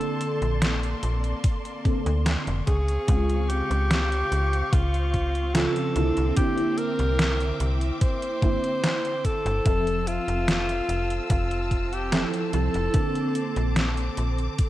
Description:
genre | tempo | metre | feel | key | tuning
vaporwave | 73 BPM | 4/4 | straight | F major | A4 = 440 Hz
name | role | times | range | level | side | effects
breathy alto saxophone | melody | 0.0-14.1 s | F4 to C5 | -29 LUFS | equal | tape echo
mellow FM electric piano | accompaniment | 0.0-14.7 s | Db3 to E5 | -29 LUFS | right 1 dB | phaser, ensemble chorus
clear symphonic string section | sustained chords | 0.0-14.7 s | Bb3 to E6 | -36 LUFS | left 1 dB | vintage 12-bit sampler grit
detuned 8-bit digital drum machine | drums | 0.0-14.7 s | hi-hat, snare drum | -28 LUFS | equal | overdrive, small room ambience, gated reverb
slap-like FM bass | bass | 0.4-14.5 s | F1 to D2 | -26 LUFS | equal | none
electronic kick drum | drums | 1.4-14.7 s | none | -24 LUFS | equal | small room ambience
room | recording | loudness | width
light reverb | cassette tape | -22 LUFS | side -14 dB against mid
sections
0.0-14.7 A section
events
none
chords
0.0 Bbmaj9; 2.7 Dbmaj7; 6.0 C9; 9.7 Fmaj7; 12.9 Bbmaj9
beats
0.62 1.44 2.26 | 3.08 3.90 4.73 5.55 | 6.37 7.19 8.01 8.84 | 9.66 10.48 11.30 12.12 | 12.95 13.77 14.59

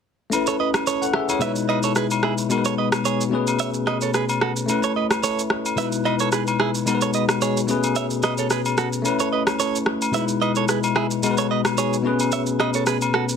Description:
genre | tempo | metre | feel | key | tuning
afrobeats | 110 BPM | 4/4 | swing 55% on 16ths | B mixolydian | A4 = 440 Hz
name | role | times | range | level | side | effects
bell-like tine electric piano | accompaniment | 0.3-13.4 s | B2 to F#5 | -22 LUFS | left 4 dB | lush chorus
electronic shaker and rim click | drums | 0.3-13.4 s | none | -24 LUFS | right 1 dB | soft clipping on snare
agogo bells | percussion | 0.3-13.1 s | none | -29 LUFS | left 5 dB | none
direct-recorded clean electric guitar | riff | 0.5-13.2 s | E4 to E5 | -25 LUFS | right 9 dB | ping-pong delay
room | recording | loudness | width
moderate studio reverb, RT60 0.5 s | dense, heavily limited modern master | -19 LUFS | side -7 dB against mid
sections
0.3-13.4 A section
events
none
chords
0.3 B9sus4; 1.4 Emaj7/B; 2.5 G#m7/B; 3.3 Amaj9/B; 4.7 B9sus4; 5.8 Emaj7/B; 6.9 G#m7/B; 7.7 Amaj9/B; 9.1 B9sus4; 10.1 Emaj7/B; 11.2 G#m7/B; 12.1 Amaj9/B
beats
| 0.32 0.87 1.41 1.96 | 2.50 3.05 3.60 4.14 | 4.69 5.23 5.78 6.32 | 6.87 7.41 7.96 8.50 | 9.05 9.60 10.14 10.69 | 11.23 11.78 12.32 12.87

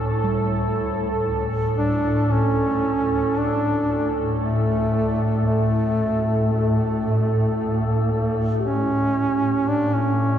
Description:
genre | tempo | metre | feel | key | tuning
dark ambient drone | 57 BPM | 4/4 | straight | unclear | A4 = 440 Hz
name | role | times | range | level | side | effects
deep dark ambient pad | sustained chords | 0.0-10.4 s | A4 | -27 LUFS | right 2 dB | chorus, built-in reverb
gamelan-type bossed gongs | arpeggios | 0.0-6.5 s | C#2 to G3 | -34 LUFS | right 2 dB | tape echo
swarming drone | drone | 0.0-10.4 s | D2 to A2 | -23 LUFS | left 1 dB | built-in reverb
mellow duduk | melody | 1.8-10.4 s | A3 to D4 | -23 LUFS | right 1 dB | tape echo
bronze singing bowl | texture | 8.6-10.4 s | G4 | -33 LUFS | left 5 dB | none
room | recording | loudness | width
wet plate reverb, RT60 2.7 s | echo-heavy mix | -19 LUFS | side -9 dB against mid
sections
0.0-8.6 A section; 8.6-10.4 B section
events
none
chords
0.0 D5; 8.6 N.C.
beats
| 0.24 1.28 2.31 3.36 | 4.41 5.46 6.52 7.59 | 8.65 9.71

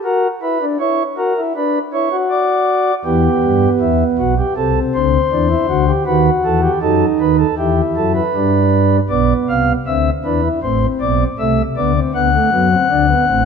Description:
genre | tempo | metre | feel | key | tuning
classical, baroque-style 3-part fugue for pipe organ | 79 BPM | 4/4 | straight | E minor | A4 = 440 Hz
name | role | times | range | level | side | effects
pipe organ, flutes | solo | 0.0-13.4 s | A1 to F#5 | -13 LUFS | equal | none
room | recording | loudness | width
wet scoring stage reverb, RT60 1.9 s | none | -13 LUFS | side -6 dB against mid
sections
0.0-9.1 A section; 9.1-13.4 B section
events
none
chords
0.0 F#7; 1.5 Bm/D; 3.0 Em; 4.6 Am/C; 6.1 B7/D#; 7.6 Em; 9.1 E5/B; 10.6 Am; 12.1 D7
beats
| 0.04 0.79 1.54 2.29 | 3.05 3.80 4.56 5.31 | 6.06 6.82 7.58 8.34 | 9.10 9.86 10.62 11.38 | 12.14 12.90

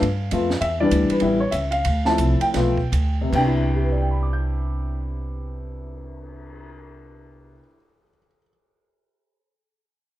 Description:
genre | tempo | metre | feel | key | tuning
jazz piano trio | 141-202 BPM | 4/4 | swing 63% on 8ths | C major | A4 = 440 Hz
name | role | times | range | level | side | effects
warm baby grand piano | melody | 0.0-8.5 s | C3 to G6 | -22 LUFS | left 1 dB | plate reverb
upright bass | bass | 0.0-7.6 s | A1 to G2 | -23 LUFS | right 1 dB | none
compact cocktail drum kit | drums | 0.0-6.6 s | crash cymbal, cymbal swell, hi-hat, kick drum, ride cymbal, snare drum | -32 LUFS | right 3 dB | none
room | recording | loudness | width
moderate club reverb, RT60 0.5 s | none | -19 LUFS | side -14 dB against mid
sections
0.0-3.3 A section; 3.3-6.7 B section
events
slowing down 0.6-3.3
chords
0.0 G7; 0.6 Em7; 1.2 A7; 1.9 Dm7; 2.5 G7; 3.3 Cmaj9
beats
0.02 0.32 | 0.61 0.91 1.22 1.53 | 1.85 2.19 2.54 2.92 | 3.33 3.75 4.18 4.60 | 5.03 5.45 5.88 6.30

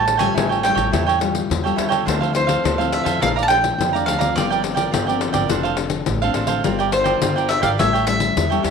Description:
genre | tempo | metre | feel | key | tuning
samba and choro | 105 BPM | 4/4 | straight | D minor | A4 = 440 Hz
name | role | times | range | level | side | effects
bowl-back mandolin | melody | 0.0-8.7 s | C5 to A5 | -21 LUFS | right 1 dB | slapback echo
cavaquinho | accompaniment | 0.0-8.7 s | D4 to Bb5 | -22 LUFS | right 10 dB | none
nylon-string guitar | accompaniment | 0.0-8.7 s | F2 to Bb4 | -26 LUFS | left 8 dB | none
upright bass | bass | 0.0-8.7 s | F1 to F2 | -26 LUFS | right 1 dB | none
pandeiro | percussion | 0.1-8.7 s | none | -23 LUFS | left 8 dB | none
room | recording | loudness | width
moderate echo chamber reverb, RT60 1.4 s, studio ambience | 1960s-style stereo with parts hard left and right | -16 LUFS | side -6 dB against mid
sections
0.0-8.7 A section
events
none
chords
0.0 A7b13; 2.1 Dm9; 3.2 Bbmaj7; 4.4 Gm7; 5.5 Dm7/F; 6.6 Gm7; 7.8 A7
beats
0.36 0.93 1.50 | 2.07 2.64 3.21 3.79 | 4.36 4.93 5.50 6.07 | 6.64 7.22 7.79 8.36

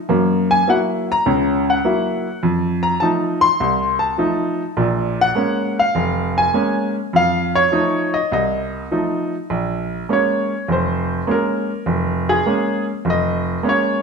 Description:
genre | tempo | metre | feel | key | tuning
solo jazz | 102 BPM | 4/4 | swing 69% on 8ths | Bb minor | A4 = 441 Hz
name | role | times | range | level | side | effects
clear baby grand piano | solo | 0.1-14.0 s | F1 to C6 | -16 LUFS | equal | none
room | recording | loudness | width
moderate large studio reverb, RT60 1.4 s | minimal, uncompressed stereo recording | -16 LUFS | side -5 dB against mid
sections
0.0-9.5 A section; 9.5-14.0 B section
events
grand piano solo 9.5-14.0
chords
0.1 Gb7; 2.4 F7; 4.8 Bbm7; 7.1 F7; 9.5 Bbm7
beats
| 0.08 0.66 1.25 1.83 | 2.42 3.01 3.60 4.19 | 4.78 5.37 5.96 6.55 | 7.14 7.73 8.32 8.91 | 9.50 10.09 10.68 11.28 | 11.87 12.46 13.05 13.64

